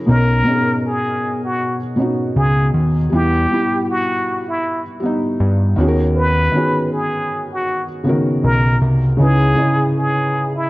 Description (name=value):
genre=lo-fi hip hop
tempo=79 BPM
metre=4/4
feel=swing 56% on 16ths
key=B major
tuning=A4 = 439 Hz
part: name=felt-muted upright piano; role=accompaniment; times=0.0-10.7 s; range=B2 to D#5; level=-18 LUFS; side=equal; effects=cassette tape, low-pass filter
part: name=trumpet with plunger mute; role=melody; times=0.1-10.7 s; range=E4 to B4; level=-20 LUFS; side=equal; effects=low-pass filter
part: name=fat analog bass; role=bass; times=0.1-9.5 s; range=B1 to G2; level=-15 LUFS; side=equal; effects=none
room=light reverb, studio reverb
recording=cassette tape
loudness=-15 LUFS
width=side -19 dB against mid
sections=0.0-10.7 A section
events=none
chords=0.1 Bmaj9; 3.1 Em; 5.8 Bmaj9/D#; 9.2 C#m9